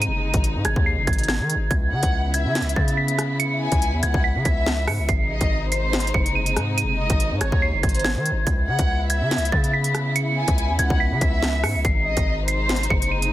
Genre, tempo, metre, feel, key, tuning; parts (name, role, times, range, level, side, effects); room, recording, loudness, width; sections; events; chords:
hip hop, drill; 142 BPM; 4/4; half-time; C# minor; A4 = 441 Hz
glassy synth bell; melody; 0.0-13.3 s; G#6 to D#7; -26 LUFS; right 3 dB; chorus, low-pass filter, digital delay
warm studio string section; sustained chords; 0.0-13.3 s; B#2 to E4; -30 LUFS; equal
distorted 808-style bass; bass; 0.0-13.3 s; F#1 to D#3; -24 LUFS; equal; distortion
drill drum kit; drums; 0.0-13.3 s; hi-hat, kick drum, rim click, snare drum; -23 LUFS; equal
warm studio violin section; second line; 1.9-13.1 s; B#4 to G#5; -29 LUFS; left 2 dB; digital delay
digital ambience; dense, heavily limited modern master; -19 LUFS; side -14 dB against mid
0.0-8.5 A section; 8.5-13.3 A section
0.0 G#; 1.7 C#m7; 5.1 G#; 8.5 C#m7; 11.8 G#